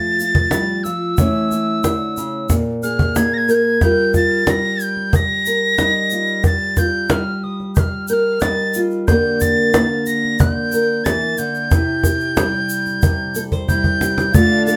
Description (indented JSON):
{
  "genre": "acoustic folk duo or small band",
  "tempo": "91 BPM",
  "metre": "4/4",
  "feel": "straight",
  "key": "unclear",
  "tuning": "A4 = 440 Hz",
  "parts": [
    { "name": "tin whistle", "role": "melody", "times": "0.0-14.8 s", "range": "Eb6 to Bb6", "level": "-22 LUFS", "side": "equal", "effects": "none" },
    { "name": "nylon-string guitar", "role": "accompaniment", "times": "0.0-14.8 s", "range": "Bb2 to C#5", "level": "-22 LUFS", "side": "equal", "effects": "none" },
    { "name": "egg shaker", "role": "percussion", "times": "0.2-14.8 s", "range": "none", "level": "-34 LUFS", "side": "equal", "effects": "none" },
    { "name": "cajon", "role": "percussion", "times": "0.3-14.5 s", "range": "none", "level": "-19 LUFS", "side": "equal", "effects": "none" },
    { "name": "warm chamber string section", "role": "sustained chords", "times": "14.3-14.8 s", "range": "D4 to F5", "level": "-29 LUFS", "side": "equal", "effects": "none" }
  ],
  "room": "wet studio reverb, RT60 0.6 s",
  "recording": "heard from further back in the room",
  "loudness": "-17 LUFS",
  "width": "mono",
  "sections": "0.0-3.8 A section; 3.8-14.3 B section",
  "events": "drum fill 13.5-14.3",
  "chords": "0.0 Fmaj9; 1.2 A/E; 2.5 Fmadd11/Bb; 3.8 Ebadd9; 9.1 Bb6/D; 11.7 C"
}